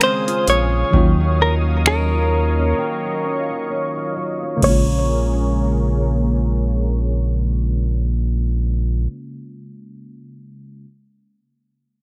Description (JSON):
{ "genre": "contemporary R&B", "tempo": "65 BPM", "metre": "4/4", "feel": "swing 58% on 16ths", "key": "Bb minor", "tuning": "A4 = 440 Hz", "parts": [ { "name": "direct-recorded clean electric guitar", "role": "melody", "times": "0.0-9.5 s", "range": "Bb4 to Db5", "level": "-24 LUFS", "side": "equal", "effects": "tremolo, low-pass filter, tape echo" }, { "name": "FM electric piano", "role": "accompaniment", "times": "0.0-10.8 s", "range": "Db3 to F4", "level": "-28 LUFS", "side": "equal", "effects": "phaser, low-pass filter" }, { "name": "lush unison pad", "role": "sustained chords", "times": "0.0-9.1 s", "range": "Bb3 to Eb6", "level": "-31 LUFS", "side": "equal", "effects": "chorus, phaser, low-pass filter" }, { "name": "nylon-string guitar", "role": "arpeggios", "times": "0.0-9.6 s", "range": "Db3 to Ab4", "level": "-29 LUFS", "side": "equal", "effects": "low-pass filter, tape echo" }, { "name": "booming analog drum machine", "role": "drums", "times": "0.0-4.9 s", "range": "crash cymbal, finger snaps, hi-hat, kick drum", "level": "-21 LUFS", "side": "equal", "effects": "none" }, { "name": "rubbery square bass", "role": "bass", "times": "0.5-9.1 s", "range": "Bb1 to Eb2", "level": "-21 LUFS", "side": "equal", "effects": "none" } ], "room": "digital ambience", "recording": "none", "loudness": "-19 LUFS", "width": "mono", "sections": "0.0-4.6 A section; 4.6-8.3 B section", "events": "filter sweep 0.0-4.6; break 2.8-4.6", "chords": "0.0 Dbmaj7; 0.9 Ebm9; 4.6 Bbm7" }